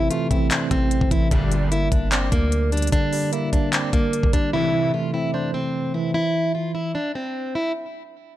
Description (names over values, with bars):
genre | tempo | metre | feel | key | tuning
hip hop, trap | 149 BPM | 4/4 | half-time | A phrygian | A4 = 440 Hz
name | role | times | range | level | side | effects
picked plugged-in steel-string acoustic guitar | melody | 0.0-7.7 s | Bb3 to F4 | -24 LUFS | equal | low-pass filter, ping-pong delay
tine electric piano | accompaniment | 0.0-7.0 s | C3 to D5 | -24 LUFS | right 2 dB | overdrive, medium stereo tremolo, low-pass filter
long sustained 808-style bass | bass | 0.0-2.9 s | G1 to D2 | -23 LUFS | equal | none
trap drum kit | drums | 0.1-4.4 s | handclaps, hi-hat, kick drum, rim click | -22 LUFS | equal | none
big bright polysynth | stabs | 1.3-1.7, 4.5-4.9 s | C2 to G3 | -28 LUFS | left 2 dB | chorus
room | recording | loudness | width
little or no reverb | none | -19 LUFS | side -14 dB against mid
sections
0.0-7.8 A section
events
none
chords
0.0 Am; 1.3 Gm; 4.5 Am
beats
0.10 0.51 0.91 | 1.31 1.72 2.12 2.52 | 2.92 3.33 3.73 4.13 | 4.54 4.94 5.34 5.74 | 6.15 6.55 6.95 7.35